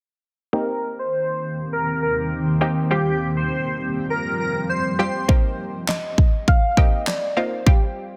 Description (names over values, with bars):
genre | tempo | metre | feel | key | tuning
dance-pop | 101 BPM | 4/4 | straight | unclear | A4 = 441 Hz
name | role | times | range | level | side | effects
airy dreamy lead | melody | 0.5-5.1 s | G4 to C5 | -27 LUFS | equal | chorus, sidechain pumping, low-pass filter, dub echo
punchy chord stab | accompaniment | 0.5-8.2 s | G3 to G4 | -28 LUFS | equal | chorus, sidechain pumping, low-pass filter
granular cloud pad | sustained chords | 1.2-5.3 s | Eb3 to G4 | -27 LUFS | equal | built-in reverb, sidechain pumping, low-pass filter
soft round pluck | melody | 5.3-8.2 s | C5 to F5 | -28 LUFS | equal | chorus, dub echo
pop drum kit | drums | 5.3-7.8 s | handclaps, kick drum, snare drum | -19 LUFS | equal | none
room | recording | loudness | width
light reverb | dense, heavily limited modern master | -21 LUFS | mono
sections
0.5-5.3 A section; 5.3-8.2 B section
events
filter sweep 0.5-5.3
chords
0.5 Eb6; 2.9 Fsus2; 5.3 Eb6; 7.7 Fsus2